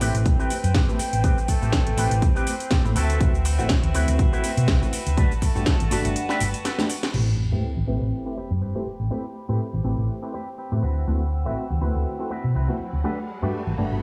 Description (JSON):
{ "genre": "filtered disco house", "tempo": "122 BPM", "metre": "4/4", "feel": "swing 55% on 16ths", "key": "A dorian", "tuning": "A4 = 440 Hz", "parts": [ { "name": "funky polysynth comp", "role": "accompaniment", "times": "0.0-14.0 s", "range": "G3 to B4", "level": "-33 LUFS", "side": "equal", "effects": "chorus, phaser, cassette tape, sidechain pumping, low-pass filter" }, { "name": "clear chamber violin section", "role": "sustained chords", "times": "0.0-14.0 s", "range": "C4 to E6", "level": "-36 LUFS", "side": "equal", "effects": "sidechain pumping, low-pass filter" }, { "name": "electric guitar with an envelope filter", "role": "riff", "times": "0.0-13.9 s", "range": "C4 to B4", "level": "-36 LUFS", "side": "equal", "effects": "sidechain pumping, low-pass filter" }, { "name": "hollow-body short-scale fingered electric bass", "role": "bass", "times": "0.0-14.0 s", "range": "G1 to B2", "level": "-26 LUFS", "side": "equal", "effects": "sidechain pumping, low-pass filter" }, { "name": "house drum kit", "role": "drums", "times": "0.0-7.2 s", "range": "crash cymbal, hi-hat, shaker, snare drum", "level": "-32 LUFS", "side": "equal", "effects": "sidechain pumping on hats, studio reverb, sidechain pumping on perc, sidechain pumping on cymbals" }, { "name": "tambourine and congas", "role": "percussion", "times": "0.0-14.0 s", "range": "none", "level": "-38 LUFS", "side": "equal", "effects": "sidechain pumping on perc, low-pass filter on perc" }, { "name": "electronic kick drum", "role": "drums", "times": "0.3-5.8 s", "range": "none", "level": "-23 LUFS", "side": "equal", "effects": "studio reverb" }, { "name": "warm horn section", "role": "melody", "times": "1.5-6.1 s", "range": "A3 to A4", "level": "-37 LUFS", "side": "equal", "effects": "vintage 12-bit sampler grit, sidechain pumping, low-pass filter, tape echo" }, { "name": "sub drop and riser", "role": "sound effects", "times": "7.1-14.0 s", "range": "none", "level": "-36 LUFS", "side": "equal", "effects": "none" } ], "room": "light reverb", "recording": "small room ambience", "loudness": "-23 LUFS", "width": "mono", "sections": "0.0-7.1 A section; 7.1-14.0 B section", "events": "filter sweep 0.0-7.1; break 6.2-7.1; drum fill 6.7-7.1; impact 7.1-9.1; riser 11.9-14.0", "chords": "0.0 Am9; 3.0 D13; 5.2 Gmaj9; 7.1 Am9; 10.8 D13; 13.0 Gmaj9" }